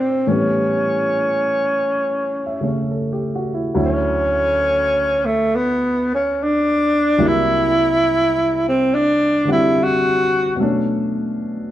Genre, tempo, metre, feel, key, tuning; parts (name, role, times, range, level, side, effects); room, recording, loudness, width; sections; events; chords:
jazz ballad; 70 BPM; 4/4; swing 68% on 8ths; A4 = 443 Hz
breathy tenor saxophone; melody; 0.0-10.6 s; A3 to F#4; -16 LUFS; equal; plate reverb
warm baby grand piano; accompaniment; 0.0-11.7 s; C2 to E5; -22 LUFS; left 1 dB
moderate large studio reverb, RT60 0.9 s; -16 LUFS; side -13 dB against mid
0.0-3.8 A section; 3.8-11.7 B section
tenor saxophone solo 3.8-11.7
0.3 A7; 3.8 Dmaj7; 7.2 C7#11; 10.6 Bm9